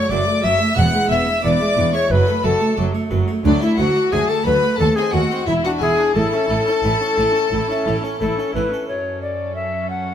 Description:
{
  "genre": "classical, baroque-style concerto movement with solo episodes",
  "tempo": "89 BPM",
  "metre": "4/4",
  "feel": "straight",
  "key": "A major",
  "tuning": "A4 = 440 Hz",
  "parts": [
    { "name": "rich chamber violin section", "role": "melody", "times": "0.0-10.1 s", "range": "A4 to F#6", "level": "-26 LUFS", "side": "left 1 dB", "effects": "none" },
    { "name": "tenor recorder", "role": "melody", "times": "0.0-10.1 s", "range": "D4 to F#5", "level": "-20 LUFS", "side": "left 3 dB", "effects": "none" },
    { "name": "rich chamber violin section", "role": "second line", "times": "0.0-10.1 s", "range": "D4 to F#5", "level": "-25 LUFS", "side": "left 4 dB", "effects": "none" },
    { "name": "harpsichord", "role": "accompaniment", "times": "0.0-10.1 s", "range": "D2 to F#5", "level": "-28 LUFS", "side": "right 2 dB", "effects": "none" },
    { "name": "warm chamber viola section", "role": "accompaniment", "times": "0.0-10.1 s", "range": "F#3 to E4", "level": "-24 LUFS", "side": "right 1 dB", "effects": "none" },
    { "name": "rich chamber double bass section", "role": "bass", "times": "0.1-8.6 s", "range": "E1 to D#2", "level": "-23 LUFS", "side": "right 3 dB", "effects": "none" },
    { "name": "warm studio cello section", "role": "bass", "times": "0.1-10.1 s", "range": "D2 to A2", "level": "-24 LUFS", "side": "right 3 dB", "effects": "none" }
  ],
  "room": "moderate recital hall reverb, RT60 1.4 s",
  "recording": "close, detailed microphones",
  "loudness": "-16 LUFS",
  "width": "side -9 dB against mid",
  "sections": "0.0-8.9 A section; 8.9-10.1 B section",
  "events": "none",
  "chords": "0.0 D/F#; 0.8 E; 2.1 F#m; 3.5 D; 4.8 D#dim7; 5.5 E7; 6.2 A; 8.9 F#m",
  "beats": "0.11 | 0.78 1.45 2.11 2.78 | 3.46 4.13 4.80 5.48 | 6.16 6.84 7.53 8.21 | 8.89 9.57"
}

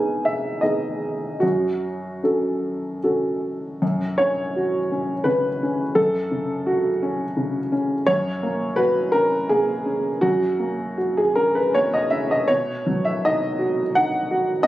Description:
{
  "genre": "neoclassical minimalist piano",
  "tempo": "74-88 BPM",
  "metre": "3/4",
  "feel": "rubato",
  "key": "F# dorian",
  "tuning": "A4 = 441 Hz",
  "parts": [
    { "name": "dark upright piano", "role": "solo", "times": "0.0-14.7 s", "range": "F#2 to G#5", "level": "-19 LUFS", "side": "equal", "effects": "none" }
  ],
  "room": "light reverb",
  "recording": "recorded on a phone in the room, studio reverb, compression",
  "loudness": "-20 LUFS",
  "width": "side -15 dB against mid",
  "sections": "0.0-3.8 A section; 3.8-14.7 B section",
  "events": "none",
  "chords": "0.0 G#m; 1.4 F#m; 8.1 F#; 12.5 Badd9",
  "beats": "0.64 | 1.42 2.23 3.03 | 3.82 4.55 5.27 | 5.97 6.68 7.38 | 8.08 8.78 9.50 | 10.23 10.98 11.73 | 12.49 13.23 13.94 | 14.63"
}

